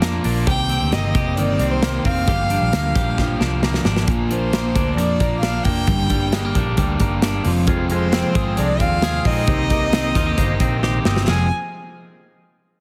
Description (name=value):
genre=jangly indie pop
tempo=133 BPM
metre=4/4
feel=straight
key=F dorian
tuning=A4 = 440 Hz
part: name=crunchy overdriven guitar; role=accompaniment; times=0.0-11.5 s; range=F2 to Bb4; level=-28 LUFS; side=equal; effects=none
part: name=clean electric guitar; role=arpeggios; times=0.0-11.5 s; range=F2 to Ab4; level=-27 LUFS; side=equal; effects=none
part: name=vintage muted picked electric bass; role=bass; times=0.0-11.5 s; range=F1 to F2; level=-25 LUFS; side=equal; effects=none
part: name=modern studio drum kit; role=drums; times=0.0-11.4 s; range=crash cymbal, hi-hat, kick drum, snare drum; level=-24 LUFS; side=equal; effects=none
part: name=rich violin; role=melody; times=0.5-11.5 s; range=C5 to Ab5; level=-27 LUFS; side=equal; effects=none
part: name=combo organ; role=accompaniment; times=7.7-11.5 s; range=Eb4 to Eb5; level=-32 LUFS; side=equal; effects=spring reverb
part: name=clear trumpet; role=second line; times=7.9-11.5 s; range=C4 to Ab4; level=-34 LUFS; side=equal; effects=digital delay
room=light reverb, studio ambience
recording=heavily compressed radio sound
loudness=-19 LUFS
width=mono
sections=0.0-4.1 A section; 4.1-11.3 B section; 11.3-12.8 C section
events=drum fill 3.2-4.1, 10.8-11.3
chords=0.5 Cm7; 2.3 Gm7; 4.1 Bb; 5.9 Gm; 7.5 Fm; 9.5 Cm7; 11.3 Fm